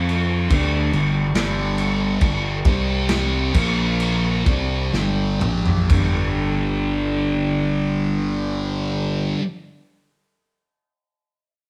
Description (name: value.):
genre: psychedelic rock.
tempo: 61-72 BPM.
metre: 4/4.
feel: straight.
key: G mixolydian.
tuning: A4 = 440 Hz.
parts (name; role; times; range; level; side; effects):
pedal harmonium; sustained chords; 0.0-9.3 s; F3 to B5; -35 LUFS; equal; none.
thick fuzz guitar; riff; 0.0-9.4 s; G2 to F4; -24 LUFS; equal; distortion, phaser.
fuzz picked electric bass; bass; 0.0-9.3 s; G1 to F2; -26 LUFS; equal; overdrive.
crunchy breakbeat drum kit; drums; 0.1-6.1 s; crash cymbal, kick drum, snare drum, toms; -24 LUFS; equal; none.
room: moderate stone room reverb, RT60 1.1 s.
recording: band playing live in one room.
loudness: -21 LUFS.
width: mono.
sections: 0.0-5.9 A section; 5.9-9.8 B section.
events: slowing down 0.0-5.9; drum fill 4.9-5.9.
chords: 0.0 F5; 0.5 G; 2.7 C5; 3.5 Bb5; 4.5 G.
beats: 0.50 1.35 | 2.22 3.10 4.00 4.93 | 5.89 6.87 7.85 8.82.